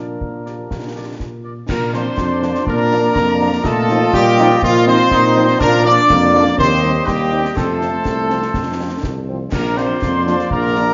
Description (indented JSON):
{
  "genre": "military-style march for wind band",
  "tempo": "122 BPM",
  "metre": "2/4",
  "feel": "straight",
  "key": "Bb major",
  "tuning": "A4 = 443 Hz",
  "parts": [
    { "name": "dark trumpet section", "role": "melody", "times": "0.0-10.9 s", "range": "F4 to D5", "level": "-22 LUFS", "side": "equal", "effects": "none" },
    { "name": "clear woodwind section", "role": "second line", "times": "0.0-10.9 s", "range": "F4 to Eb5", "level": "-28 LUFS", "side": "equal", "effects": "none" },
    { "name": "dark euphonium", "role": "second line", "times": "0.0-10.9 s", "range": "F3 to G4", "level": "-25 LUFS", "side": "equal", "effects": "none" },
    { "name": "warm French horn section", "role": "accompaniment", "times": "0.0-10.8 s", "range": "F3 to Eb4", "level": "-28 LUFS", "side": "equal", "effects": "none" },
    { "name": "warm tuba", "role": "bass", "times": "0.0-10.9 s", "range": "Bb1 to Bb2", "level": "-22 LUFS", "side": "equal", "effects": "none" },
    { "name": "concert bass drum, concert snare drum and clash cymbals", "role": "drums", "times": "0.2-10.9 s", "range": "none", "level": "-28 LUFS", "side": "equal", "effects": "none" },
    { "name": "bright large flute ensemble", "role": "second line", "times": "1.7-10.9 s", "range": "F5 to D6", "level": "-23 LUFS", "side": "equal", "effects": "none" },
    { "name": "warm trombone section", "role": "sustained chords", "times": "1.7-10.9 s", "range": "A3 to F4", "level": "-25 LUFS", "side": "equal", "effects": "none" }
  ],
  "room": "wet recital hall reverb, RT60 1.5 s",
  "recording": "nothing above 7.5 kHz",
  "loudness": "-15 LUFS",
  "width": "mono",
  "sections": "0.0-1.7 A section; 1.7-10.9 A section",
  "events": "none",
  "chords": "0.0 Bb; 3.7 F7/Bb; 5.6 Bb; 6.6 Cm/Eb; 7.6 F; 9.5 Bb",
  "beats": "0.22 | 0.71 1.20 | 1.69 2.18 | 2.67 3.16 | 3.65 4.14 | 4.63 5.12 | 5.61 6.10 | 6.59 7.08 | 7.57 8.06 | 8.55 9.04 | 9.53 10.02 | 10.51"
}